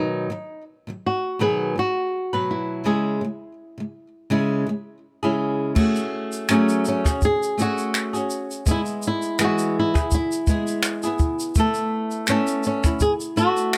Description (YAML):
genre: acoustic pop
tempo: 83 BPM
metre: 4/4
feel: swing 55% on 16ths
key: unclear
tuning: A4 = 441 Hz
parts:
  - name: flamenco guitar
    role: melody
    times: 0.0-13.8 s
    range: C#4 to G#4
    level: -26 LUFS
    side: equal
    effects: none
  - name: flamenco guitar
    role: accompaniment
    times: 0.0-13.8 s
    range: B2 to B4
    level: -25 LUFS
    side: equal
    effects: none
  - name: compact cocktail drum kit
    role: drums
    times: 5.8-13.8 s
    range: crash cymbal, finger snaps, kick drum, shaker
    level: -26 LUFS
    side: equal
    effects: none
room: little or no reverb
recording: close, detailed microphones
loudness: -23 LUFS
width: mono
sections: 0.0-5.8 A section; 5.8-13.8 B section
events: none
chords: 0.0 B; 2.9 C#m; 5.8 F#madd9; 8.7 E; 11.6 Asus2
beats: 0.68 1.41 2.13 | 2.86 3.59 4.31 5.04 | 5.76 6.49 7.22 7.94 | 8.67 9.39 10.12 10.84 | 11.56 12.29 13.01 13.74